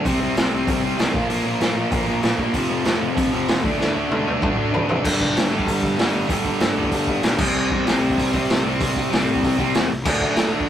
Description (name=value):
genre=punk rock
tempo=192 BPM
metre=4/4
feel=straight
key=unclear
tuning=A4 = 440 Hz
part: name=distorted electric guitar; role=riff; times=0.0-10.7 s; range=F2 to D4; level=-23 LUFS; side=left 4 dB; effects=distortion
part: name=overdriven electric guitar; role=riff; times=0.0-10.7 s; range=F2 to D4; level=-24 LUFS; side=right 5 dB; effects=none
part: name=fuzz picked electric bass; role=bass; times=0.0-10.7 s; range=F1 to C3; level=-30 LUFS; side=equal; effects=overdrive
part: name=raw garage drum kit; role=drums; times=0.1-10.7 s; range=crash cymbal, hi-hat, kick drum, snare drum, toms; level=-22 LUFS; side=equal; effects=none
room=light reverb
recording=rough rehearsal-room recording, tube saturation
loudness=-18 LUFS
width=side -10 dB against mid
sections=0.1-5.0 A section; 5.0-10.7 B section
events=drum fill 3.8-5.0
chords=0.1 C5; 1.1 Bb5; 2.5 F5; 3.6 D5; 5.0 G; 7.4 C5; 10.1 D